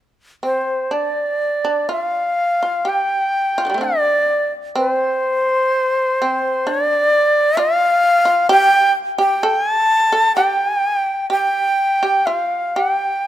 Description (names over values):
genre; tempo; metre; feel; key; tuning
japanese traditional, Japanese chamber music; 63 BPM; 4/4; rubato; G suspended pentatonic; A4 = 440 Hz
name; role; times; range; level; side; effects
breathy bright shakuhachi; melody; 0.4-13.3 s; C5 to A5; -15 LUFS; equal; none
shamisen; second line; 0.4-13.3 s; D3 to A4; -22 LUFS; right 1 dB; none
room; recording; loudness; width
light reverb; close, detailed microphones; -15 LUFS; side -12 dB against mid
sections
0.0-13.3 A section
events
none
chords
none